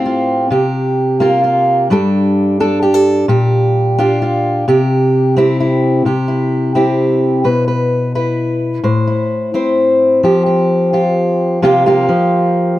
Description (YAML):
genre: folk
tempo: 130 BPM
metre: 3/4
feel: straight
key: C mixolydian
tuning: A4 = 439 Hz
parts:
  - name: fingerpicked steel-string acoustic guitar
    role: solo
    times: 0.0-12.8 s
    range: G2 to C5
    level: -11 LUFS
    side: equal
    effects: none
room: moderate studio reverb, RT60 0.6 s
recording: dark, warm production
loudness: -11 LUFS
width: side -15 dB against mid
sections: 0.0-6.1 A section; 6.1-11.6 B section; 11.6-12.8 A section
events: none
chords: 0.0 Fadd9/A; 0.5 C7sus4; 1.9 Gsus2; 3.3 Bb6; 4.7 C; 7.4 E5/B; 8.8 Am; 10.2 Fsus2; 11.6 C7sus4